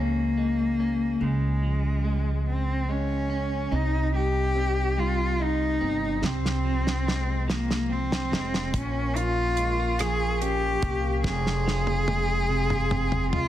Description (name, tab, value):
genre	six-eight pop ballad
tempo	48 BPM (dotted quarters)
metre	6/8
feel	straight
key	unclear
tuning	A4 = 440 Hz
part	rich cello	melody	0.0-13.5 s	Ab3 to Ab4	-27 LUFS	left 1 dB	ping-pong delay
part	clean electric guitar	accompaniment	0.0-13.5 s	F2 to Eb4	-30 LUFS	right 3 dB	none
part	upright bass	bass	0.0-13.5 s	F1 to Db2	-28 LUFS	equal	none
part	damped 70s drum kit	drums	6.2-13.5 s	hi-hat, kick drum, rim click, snare drum, toms	-30 LUFS	equal	none
part	glass harmonica	sustained chords	8.7-13.5 s	Ab4 to Db6	-37 LUFS	left 2 dB	none
room	light reverb, studio reverb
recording	dense, heavily limited modern master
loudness	-23 LUFS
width	side -12 dB against mid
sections	0.0-3.7 A section; 3.7-13.5 B section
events	drum fill 6.2-8.7, 11.2-13.5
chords	0.0 Db; 3.7 Cm; 6.2 Fm/C; 8.7 Bbm; 11.2 Fm